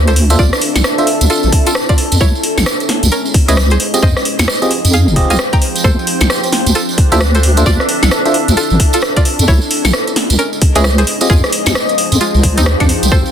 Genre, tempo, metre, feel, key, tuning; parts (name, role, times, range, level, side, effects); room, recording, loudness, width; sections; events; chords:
UK garage, two-step garage; 132 BPM; 4/4; swing 62% on 16ths; A4 = 440 Hz
ethereal airy pad; sustained chords; 0.0-13.3 s; B3 to A4; -24 LUFS; equal; ensemble chorus, built-in reverb, phaser, sidechain pumping
deep soft wobble bass; bass; 0.0-13.2 s; F1 to F2; -12 LUFS; equal; chorus, sidechain pumping
deep dark ambient pad; texture; 0.0-13.3 s; F3 to G5; -20 LUFS; left 1 dB; chorus, built-in reverb, sidechain pumping
string-like resonator pluck; melody; 0.1-13.3 s; F3 to Bb5; -20 LUFS; equal; chorus, tape echo
house drum kit; drums; 0.1-13.1 s; claves, hi-hat, rim click, snare drum; -16 LUFS; equal; overdrive
tambourine; percussion; 0.1-13.3 s; -21 LUFS; right 4 dB
FM electric piano; stabs; 0.3-11.3 s; C4 to E5; -18 LUFS; right 1 dB; chorus, tape echo
electronic kick drum; drums; 0.4-13.2 s; -12 LUFS; equal
swell; sound effects; 12.4-13.1 s; -30 LUFS; right 2 dB
little or no reverb; dense, heavily limited modern master; -10 LUFS; side -9 dB against mid
0.0-13.3 A section
0.0 Dm9; 2.2 C#m9; 3.8 Fm9; 5.8 Dm9; 9.5 C#m9; 11.1 Fm9